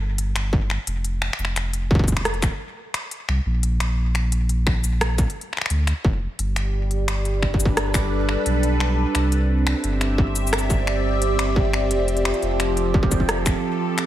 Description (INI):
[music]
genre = IDM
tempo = 87 BPM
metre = 4/4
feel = straight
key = unclear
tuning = A4 = 441 Hz
[part]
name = warm sub bass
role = bass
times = 0.0-13.5 s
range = F1 to D2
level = -22 LUFS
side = equal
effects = tube saturation
[part]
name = industrial drum kit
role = drums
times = 0.2-14.1 s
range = cabasa, finger snaps, hi-hat, rim click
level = -26 LUFS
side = left 2 dB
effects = studio reverb
[part]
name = electronic kick drum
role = drums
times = 0.5-13.6 s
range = none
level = -20 LUFS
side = equal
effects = distortion, studio reverb
[part]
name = phased analog pad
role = sustained chords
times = 6.7-14.1 s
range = F3 to E5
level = -23 LUFS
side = right 1 dB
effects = phaser, chorus, shimmer reverb
[sound]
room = light reverb, digital ambience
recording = none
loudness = -19 LUFS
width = side -13 dB against mid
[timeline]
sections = 0.0-14.1 A section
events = none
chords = 0.0 N.C.; 0.9 F5; 3.6 N.C.; 6.4 Gadd9; 9.1 Cmaj9; 11.9 Fmaj9